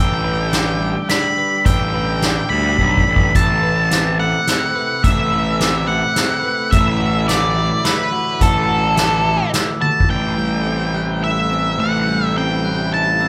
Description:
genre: post-rock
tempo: 107 BPM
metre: 3/4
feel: straight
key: A dorian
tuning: A4 = 439 Hz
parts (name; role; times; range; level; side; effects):
- octave-fuzz lead guitar; melody; 0.0-13.3 s; A4 to B5; -21 LUFS; equal; distortion
- rich studio string section; sustained chords; 0.0-13.3 s; C3 to G4; -32 LUFS; equal; none
- glockenspiel with brass mallets; arpeggios; 0.0-13.3 s; D6 to G6; -30 LUFS; equal; none
- semi-hollow electric guitar; arpeggios; 0.0-13.3 s; A2 to B4; -28 LUFS; equal; none
- fuzz picked electric bass; bass; 0.0-13.3 s; A1 to D2; -23 LUFS; equal; overdrive
- soft-mallet drum kit; drums; 0.5-13.0 s; hi-hat, kick drum, ride cymbal, snare drum, splash cymbal, toms; -22 LUFS; equal; none
room: light reverb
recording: none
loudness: -17 LUFS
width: mono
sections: 0.0-10.1 A section; 10.1-13.3 B section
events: drum fill 2.8-3.4, 9.8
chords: 0.0 G/A; 3.4 Amadd9; 6.7 Dadd9/A; 10.1 Am7

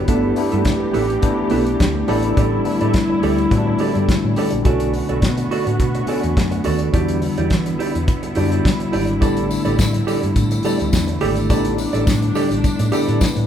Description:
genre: disco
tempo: 105 BPM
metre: 4/4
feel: straight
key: unclear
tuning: A4 = 440 Hz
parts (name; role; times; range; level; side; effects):
- tine electric piano; accompaniment; 0.0-13.5 s; G3 to E5; -23 LUFS; left 3 dB; medium stereo tremolo
- dark studio string section; sustained chords; 0.0-13.5 s; D3 to G4; -22 LUFS; equal; none
- hollow-body short-scale fingered electric bass; bass; 0.0-13.5 s; G1 to E3; -22 LUFS; equal; none
- mellow electric guitar; accompaniment; 0.1-13.4 s; B3 to D5; -24 LUFS; right 5 dB; none
- damped 70s drum kit; drums; 0.1-13.5 s; hi-hat, kick drum, snare drum; -21 LUFS; equal; none
- tambourine; percussion; 9.2-13.3 s; none; -33 LUFS; left 4 dB; none
room: moderate large studio reverb, RT60 1.2 s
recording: band playing live in one room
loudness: -16 LUFS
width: side -9 dB against mid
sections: 0.0-4.7 A section; 4.7-13.5 B section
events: tine electric piano fill 12.6-13.5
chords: 0.1 G69; 2.1 A7sus4; 4.7 Bm7; 6.9 Em7; 9.2 A7sus4

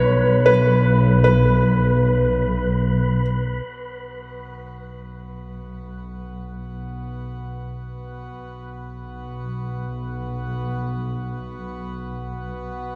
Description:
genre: ambient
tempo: free time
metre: none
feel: none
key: unclear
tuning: A4 = 440 Hz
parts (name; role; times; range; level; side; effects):
- felt-muted upright piano; melody; 0.0-3.2 s; B4 to C#5; -23 LUFS; equal; tape echo
- warm studio double bass section; bass; 0.0-13.0 s; B1; -24 LUFS; equal; none
- wind-like tuned noise texture; texture; 0.0-3.7 s; B4 to B5; -29 LUFS; equal; built-in reverb
- hand-pumped harmonium; drone; 3.7-13.0 s; B3 to F#4; -39 LUFS; equal; none
room: wet cathedral reverb, RT60 5.7 s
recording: in a vast, echoing space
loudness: -20 LUFS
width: mono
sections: 0.0-3.7 A section; 3.7-13.0 B section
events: fade-in on double bass section 3.7-13.0; fade-in on harmonium 3.7-13.0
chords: 0.0 N.C.; 3.7 B5

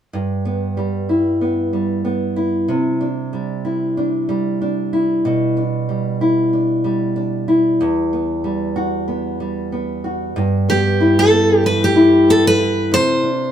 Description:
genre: pop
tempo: 94 BPM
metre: 4/4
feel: swing 55% on 16ths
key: G major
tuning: A4 = 440 Hz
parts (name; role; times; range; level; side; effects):
- nylon-string guitar; accompaniment; 0.1-13.5 s; E2 to F#4; -16 LUFS; equal; none
- picked steel-string acoustic guitar; melody; 10.7-13.5 s; G4 to C5; -15 LUFS; equal; none
room: moderate studio reverb, RT60 0.8 s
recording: band playing live in one room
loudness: -15 LUFS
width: side -9 dB against mid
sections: 0.1-10.4 A section; 10.4-13.5 B section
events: none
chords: 0.1 G6; 2.7 Cadd9; 5.2 G6/B; 7.8 Emadd9; 10.4 G6; 12.9 Cadd9

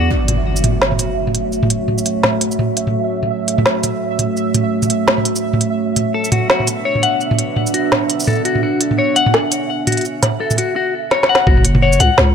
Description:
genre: half-time drum and bass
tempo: 169 BPM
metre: 4/4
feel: swing 58% on 16ths, half-time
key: F# minor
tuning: A4 = 440 Hz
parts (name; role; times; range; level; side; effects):
- deep dark ambient pad; sustained chords; 0.0-12.3 s; A3 to G#5; -20 LUFS; right 2 dB; chorus, built-in reverb, vintage 12-bit sampler grit, sidechain pumping
- clean electric guitar; arpeggios; 0.0-0.1, 6.1-12.2 s; F#4 to F#5; -18 LUFS; left 6 dB; ping-pong delay
- growling 808-style bass; bass; 0.0-0.1, 11.5-12.3 s; F#1 to C#2; -14 LUFS; equal; tube saturation
- impact; sound effects; 0.1-1.5 s; none; -22 LUFS; equal; none
- pulsing gated texture; texture; 0.4-10.8 s; E5; -26 LUFS; right 6 dB; chorus, built-in reverb
- organic electronic drum kit; drums; 0.3-12.3 s; hi-hat, shaker, snare drum, toms; -16 LUFS; right 1 dB; none
- electronic kick drum; drums; 11.5-11.6 s; none; -13 LUFS; equal; none
room: light reverb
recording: none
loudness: -14 LUFS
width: side -7 dB against mid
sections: 0.1-11.5 A section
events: impact 0.1-1.5; drum fill 11.1-11.5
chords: 0.1 F#m; 5.8 Bm; 11.5 F#m

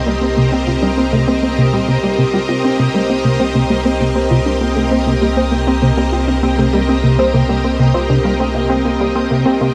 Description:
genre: ambient, sequencer-driven space music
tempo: 99 BPM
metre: 4/4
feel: straight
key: unclear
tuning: A4 = 443 Hz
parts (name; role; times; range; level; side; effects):
- string machine, full ensemble; sustained chords; 0.0-9.7 s; C4 to Eb5; -20 LUFS; equal; ensemble chorus
- soft round pluck; arpeggios; 0.0-9.7 s; Bb2 to F4; -23 LUFS; equal; chorus, cassette tape, analog delay
- warm sub bass; bass; 0.0-9.7 s; C2; -24 LUFS; equal; none
- plucky analog bass; riff; 0.1-9.7 s; C3 to C4; -18 LUFS; equal; subtle chorus, analog delay
room: wet shimmer reverb, RT60 7.9 s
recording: none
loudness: -15 LUFS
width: mono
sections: 0.0-9.7 A section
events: filter sweep on analog synth bass 0.0-9.7; filter sweep on synth arpeggio sound 0.0-9.7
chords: 0.0 Cm7

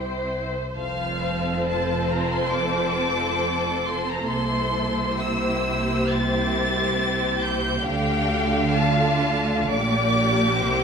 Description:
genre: classical, slow romantic movement for string orchestra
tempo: 62-71 BPM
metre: 4/4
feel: rubato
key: F major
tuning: A4 = 435 Hz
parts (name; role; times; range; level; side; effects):
- clear studio violin section; melody; 0.0-10.8 s; F5 to A6; -27 LUFS; left 1 dB; none
- dark symphonic violin section; second line; 0.0-10.8 s; F4 to F5; -26 LUFS; left 2 dB; none
- warm studio viola section; accompaniment; 0.0-10.8 s; A3 to F4; -28 LUFS; equal; none
- rich symphonic cello section; bass; 0.0-10.8 s; C2 to D3; -30 LUFS; right 3 dB; none
- rich symphonic double bass section; bass; 0.0-10.8 s; F1 to D2; -30 LUFS; right 4 dB; none
room: wet recital hall reverb, RT60 1.4 s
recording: minimal, uncompressed stereo recording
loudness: -20 LUFS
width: side -6 dB against mid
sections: 0.0-10.8 A section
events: none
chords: 0.0 C; 0.8 F; 4.3 C7; 7.9 Dm; 9.7 Gm/Bb

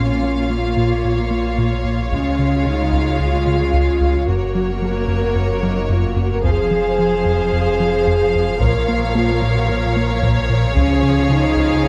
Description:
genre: cinematic, hybrid orchestral and electronic film score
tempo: 111 BPM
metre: 4/4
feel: straight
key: unclear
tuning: A4 = 439 Hz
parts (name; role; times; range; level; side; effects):
- rich symphonic violin section; second line; 0.0-11.9 s; Bb4 to F5; -27 LUFS; equal; none
- rich studio viola section; accompaniment; 0.0-11.9 s; F3 to Bb4; -27 LUFS; equal; none
- mellow French horn section; sustained chords; 0.0-11.9 s; Db4 to Bb4; -22 LUFS; equal; none
- rubbery square bass; riff; 0.0-11.9 s; Db2 to Bb3; -23 LUFS; equal; none
- punchy sub bass; bass; 0.0-11.9 s; F1 to Db2; -26 LUFS; equal; none
- rich symphonic cello section; bass; 0.0-11.9 s; F2 to Db3; -27 LUFS; equal; none
- solo taiko drums; drums; 2.1-3.2, 6.5-11.3 s; none; -25 LUFS; equal; none
room: light reverb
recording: close, detailed microphones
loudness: -17 LUFS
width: mono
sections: 0.0-11.9 A section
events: none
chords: 0.0 Bbm; 2.1 Db; 4.3 Gb; 6.4 Fm; 8.6 Bbm; 10.8 Db

